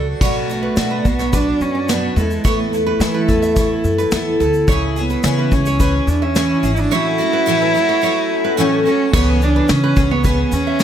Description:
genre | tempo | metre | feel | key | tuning
acoustic pop | 108 BPM | 4/4 | straight | unclear | A4 = 440 Hz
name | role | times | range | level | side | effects
picked twelve-string acoustic guitar | accompaniment | 0.0-10.8 s | A2 to A4 | -19 LUFS | left 1 dB | double-tracked left and right
nylon-string guitar | arpeggios | 0.0-10.8 s | A4 to E5 | -26 LUFS | right 5 dB | tape echo
upright bass | bass | 0.0-10.8 s | G#1 to E3 | -20 LUFS | equal | none
vintage brush drum kit | drums | 0.2-10.8 s | crash cymbal, kick drum, shaker, snare drum | -19 LUFS | left 1 dB | none
warm cello | melody | 0.5-10.8 s | G#3 to E4 | -18 LUFS | right 2 dB | tape echo
room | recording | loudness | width
light reverb | none | -14 LUFS | side -9 dB against mid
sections
0.2-9.1 A section; 9.1-10.8 B section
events
none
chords
0.2 Bm; 2.2 Esus4; 4.7 C#m; 6.9 A6; 9.1 C#m7

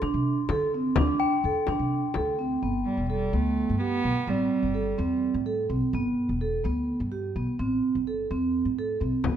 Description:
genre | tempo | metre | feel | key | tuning
contemporary instrumental, chamber music in an uneven meter | 254 BPM (eighths) | 7/8 | straight | G major | A4 = 435 Hz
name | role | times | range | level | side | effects
vibraphone with medium mallets | arpeggios | 0.0-9.4 s | B3 to A4 | -27 LUFS | right 3 dB | none
upright bass | bass | 0.0-9.4 s | E1 to D3 | -30 LUFS | left 1 dB | none
frame drum | percussion | 0.0-2.4, 9.2-9.4 s | none | -30 LUFS | left 6 dB | none
glockenspiel with rubber mallets | texture | 1.2-1.8 s | G5 | -33 LUFS | left 13 dB | none
warm cello | melody | 2.9-5.2 s | G3 to B3 | -29 LUFS | right 4 dB | none
room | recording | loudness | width
light reverb | none | -24 LUFS | side -9 dB against mid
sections
0.0-2.6 A section; 2.6-9.4 B section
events
none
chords
0.0 D5; 2.6 Gadd9; 4.3 Am7; 5.9 G; 7.6 Am7

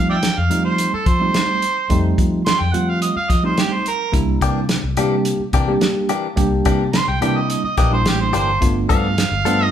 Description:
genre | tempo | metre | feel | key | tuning
straight-eighth soul blues | 107 BPM | 4/4 | straight | C mixolydian | A4 = 440 Hz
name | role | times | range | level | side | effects
mellow harmonica | second line | 0.0-9.7 s | G4 to C6 | -21 LUFS | right 3 dB | overdrive
tine electric piano | accompaniment | 0.0-9.7 s | G3 to G4 | -22 LUFS | right 2 dB | medium stereo tremolo
fingered electric bass | bass | 0.0-9.7 s | G1 to F3 | -21 LUFS | left 1 dB | none
warm soul drum kit | drums | 0.2-9.6 s | hi-hat, kick drum, snare drum | -20 LUFS | equal | none
direct-recorded clean electric guitar | stabs | 4.4-9.6 s | E3 to A4 | -23 LUFS | left 6 dB | none
room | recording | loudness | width
moderate large studio reverb, RT60 1.2 s | band playing live in one room | -15 LUFS | side -9 dB against mid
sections
0.0-9.7 A section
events
harmonica solo 0.0-9.7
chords
0.0 F9; 4.1 C9; 8.6 G9

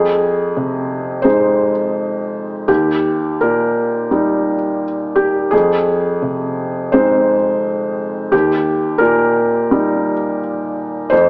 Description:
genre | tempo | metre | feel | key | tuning
neoclassical minimalist piano | 85 BPM | 4/4 | rubato | unclear | A4 = 440 Hz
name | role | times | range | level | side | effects
felt-muted upright piano | solo | 0.0-11.3 s | Eb2 to C5 | -16 LUFS | equal | none
room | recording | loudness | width
light reverb | AM radio sound | -17 LUFS | mono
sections
0.0-11.3 A section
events
none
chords
0.0 Fm7; 2.7 Eb; 5.5 Fm7; 8.3 Eb

